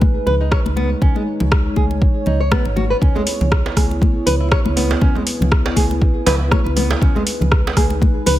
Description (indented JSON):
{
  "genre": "afro house",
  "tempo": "120 BPM",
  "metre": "4/4",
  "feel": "swing 56% on 16ths",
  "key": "C# minor",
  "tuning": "A4 = 441 Hz",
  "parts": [
    { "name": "dark analog pad", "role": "sustained chords", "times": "0.0-8.4 s", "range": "G#3 to C#5", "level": "-24 LUFS", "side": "equal", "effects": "chorus, sidechain pumping" },
    { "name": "woody FM bass", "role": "bass", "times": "0.0-8.4 s", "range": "G#1 to C#2", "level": "-20 LUFS", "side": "equal", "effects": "sidechain pumping" },
    { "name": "electronic kick drum", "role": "drums", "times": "0.0-8.1 s", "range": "none", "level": "-16 LUFS", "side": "equal", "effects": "none" },
    { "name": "congas", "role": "percussion", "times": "0.0-8.4 s", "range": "none", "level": "-24 LUFS", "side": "left 3 dB", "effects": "none" },
    { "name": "nylon-string guitar", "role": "arpeggios", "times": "0.3-8.3 s", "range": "G#3 to C#5", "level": "-23 LUFS", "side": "equal", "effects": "sidechain pumping, low-pass filter, digital delay" },
    { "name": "deep house drum kit", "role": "drums", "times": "0.5-8.4 s", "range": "hi-hat, rim click", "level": "-23 LUFS", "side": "equal", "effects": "none" },
    { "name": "djembe", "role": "percussion", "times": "3.2-7.8 s", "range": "none", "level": "-26 LUFS", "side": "right 4 dB", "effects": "none" }
  ],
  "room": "light reverb, studio reverb",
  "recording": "none",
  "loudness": "-14 LUFS",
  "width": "side -14 dB against mid",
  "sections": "0.0-8.4 A section",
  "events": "none",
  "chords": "0.0 B6; 3.0 C#m7; 7.0 B6"
}